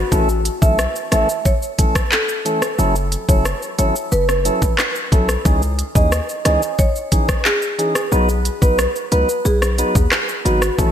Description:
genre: dancehall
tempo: 90 BPM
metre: 4/4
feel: straight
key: unclear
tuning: A4 = 436 Hz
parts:
  - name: hard-hitting 808-style bass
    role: bass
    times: 0.0-10.9 s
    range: F#1 to D#2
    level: -19 LUFS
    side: equal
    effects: none
  - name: tonewheel organ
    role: accompaniment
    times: 0.1-10.9 s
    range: E3 to B4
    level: -22 LUFS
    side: equal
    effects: stopped rotary speaker
  - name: island pop drum kit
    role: drums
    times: 0.1-10.9 s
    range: handclaps, hi-hat, kick drum, rim click, shaker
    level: -18 LUFS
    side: equal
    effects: overdrive, gated reverb
  - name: marimba with soft mallets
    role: melody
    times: 0.6-10.6 s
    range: F#4 to E5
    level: -22 LUFS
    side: equal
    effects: ping-pong delay
room: light reverb, digital ambience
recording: bright 1980s-style digital production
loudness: -15 LUFS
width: side -9 dB against mid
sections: 0.0-10.9 A section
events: none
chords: 0.1 A; 2.8 F#m7; 5.5 C#madd9; 8.1 B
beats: | 0.12 0.79 1.45 2.12 | 2.79 3.45 4.12 4.79 | 5.45 6.12 6.79 7.45 | 8.12 8.79 9.45 10.12 | 10.79

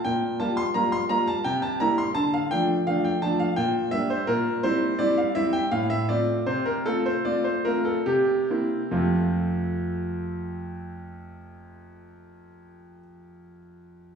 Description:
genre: classical-period piano sonatina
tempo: 69-86 BPM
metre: 3/4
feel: rubato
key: F major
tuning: A4 = 440 Hz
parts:
  - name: clear concert grand piano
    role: solo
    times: 0.0-14.2 s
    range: F2 to C6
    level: -23 LUFS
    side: equal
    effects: none
room: wet recital hall reverb, RT60 1.5 s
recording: heard from further back in the room, small room ambience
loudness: -22 LUFS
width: side -6 dB against mid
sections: 0.0-8.9 A section; 8.9-13.9 B section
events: slowing down 3.2-8.9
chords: 0.1 Gm7/Bb; 1.5 C7; 2.2 Dm; 3.6 Gm/Bb; 4.3 C7/Bb; 5.7 F/A; 6.5 F/C; 8.1 C7; 8.9 F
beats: | 0.05 0.76 1.46 | 2.16 2.88 3.58 | 4.29 5.00 5.73 | 6.47 7.25 8.07 | 8.92 9.75 10.58 | 11.42 12.25 13.08

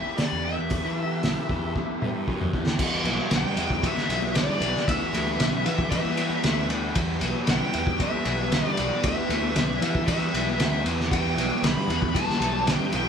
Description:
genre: psychedelic rock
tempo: 115 BPM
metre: 4/4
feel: straight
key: E minor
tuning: A4 = 441 Hz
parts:
  - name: dark smooth lead guitar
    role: melody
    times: 0.0-13.1 s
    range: D5 to B5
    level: -29 LUFS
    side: left 2 dB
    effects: wah, overdrive
  - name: string machine, cellos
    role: sustained chords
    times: 0.0-13.1 s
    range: B4 to A5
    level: -35 LUFS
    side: right 2 dB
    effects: phaser, ensemble chorus
  - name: crunchy overdriven guitar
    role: riff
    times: 0.0-13.1 s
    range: E3 to G4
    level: -30 LUFS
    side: equal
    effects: phaser
  - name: cloth-damped thuddy drum kit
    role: drums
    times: 0.2-13.0 s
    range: crash cymbal, hi-hat, kick drum, ride cymbal, snare drum, toms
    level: -26 LUFS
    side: equal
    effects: none
  - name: fuzz picked electric bass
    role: bass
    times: 0.3-13.0 s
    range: B1 to E3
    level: -30 LUFS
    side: equal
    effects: overdrive
  - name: congas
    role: percussion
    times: 3.0-13.0 s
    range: none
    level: -36 LUFS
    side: left 2 dB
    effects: none
room: moderate large studio reverb, RT60 0.9 s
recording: band playing live in one room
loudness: -22 LUFS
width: side -7 dB against mid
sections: 0.0-2.8 A section; 2.8-13.1 B section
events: drum fill 1.8-2.8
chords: 0.0 Em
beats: 0.19 | 0.71 1.23 1.75 2.27 | 2.79 3.32 3.84 4.36 | 4.88 5.40 5.92 6.44 | 6.96 7.48 8.00 8.52 | 9.04 9.56 10.07 10.59 | 11.11 11.63 12.15 12.67

